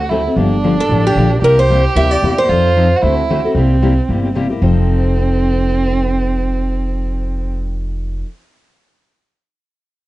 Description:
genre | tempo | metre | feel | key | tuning
acoustic string swing (jazz manouche) | 226 BPM | 4/4 | swing 56% on 8ths | F major | A4 = 440 Hz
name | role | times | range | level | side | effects
warm violin | second line | 0.0-7.5 s | C4 to G4 | -19 LUFS | right 4 dB | none
picked steel-string acoustic guitar | accompaniment | 0.0-8.3 s | C3 to A4 | -19 LUFS | left 3 dB | none
upright bass | bass | 0.0-8.2 s | F1 to F2 | -16 LUFS | equal | none
picked steel-string acoustic guitar | melody | 0.8-3.1 s | G4 to E5 | -15 LUFS | right 1 dB | analog delay
room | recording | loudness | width
light reverb | worn, warbling old tape, cassette tape, warbly pitch drift, nothing above 10.8 kHz | -12 LUFS | side -16 dB against mid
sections
0.0-4.6 A section; 4.6-6.8 B section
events
none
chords
0.4 Gm7; 1.4 C7; 2.5 F7; 3.0 D7; 3.6 C7; 4.6 F7

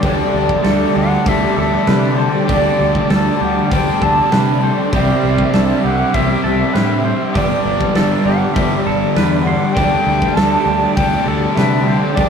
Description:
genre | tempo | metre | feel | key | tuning
rock, shoegaze and dream pop | 99 BPM | 4/4 | straight | unclear | A4 = 440 Hz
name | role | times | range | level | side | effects
reedy concert flute | melody | 0.0-12.3 s | D5 to A5 | -20 LUFS | right 1 dB | none
soft string machine | sustained chords | 0.0-12.3 s | G4 to D6 | -23 LUFS | left 1 dB | phaser, ensemble chorus
twangy electric guitar | arpeggios | 0.0-12.3 s | G4 to C6 | -25 LUFS | right 4 dB | none
biting overdriven guitar | riff | 0.0-12.3 s | G2 to E4 | -23 LUFS | right 4 dB | none
distorted electric guitar | riff | 0.0-12.3 s | G2 to D4 | -23 LUFS | left 2 dB | distortion
raw garage guitar | riff | 0.0-12.3 s | G2 to A4 | -22 LUFS | left 5 dB | overdrive
fuzz fingered electric bass | bass | 0.0-12.3 s | G1 to C3 | -21 LUFS | equal | overdrive
big rock drum kit | drums | 0.0-12.3 s | hi-hat, kick drum, snare drum | -19 LUFS | equal | none
room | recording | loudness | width
wet booth ambience, RT60 0.2 s | rough rehearsal-room recording | -12 LUFS | side -6 dB against mid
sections
0.0-12.3 A section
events
none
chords
0.0 Dsus4; 4.9 Cadd9; 7.3 G; 9.8 Dsus4

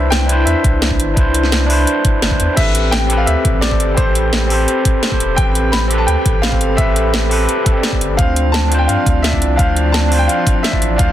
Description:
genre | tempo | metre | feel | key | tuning
liquid drum and bass | 171 BPM | 4/4 | straight | A minor | A4 = 441 Hz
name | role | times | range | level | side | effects
clear concert grand piano | melody | 0.0-11.1 s | C5 to B5 | -21 LUFS | left 1 dB | dub echo
overdriven tine electric piano | accompaniment | 0.0-11.1 s | C4 to D5 | -18 LUFS | equal | digital delay
airy breathy pad | sustained chords | 0.0-11.1 s | F3 to B5 | -24 LUFS | left 1 dB | chorus, sidechain pumping
warm sub bass | bass | 0.0-11.1 s | E1 to G2 | -17 LUFS | equal | none
drum and bass drum kit | drums | 0.1-11.1 s | crash cymbal, hi-hat, snare drum | -19 LUFS | equal | none
electronic kick drum | drums | 0.6-11.1 s | none | -16 LUFS | equal | none
room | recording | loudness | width
light reverb, digital ambience | dense, heavily limited modern master | -12 LUFS | side -12 dB against mid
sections
0.0-2.6 A section; 2.6-11.1 A section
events
drop 0.0-2.6, 2.6-11.1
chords
0.0 Cmaj9; 2.6 Am9; 8.2 Dm9

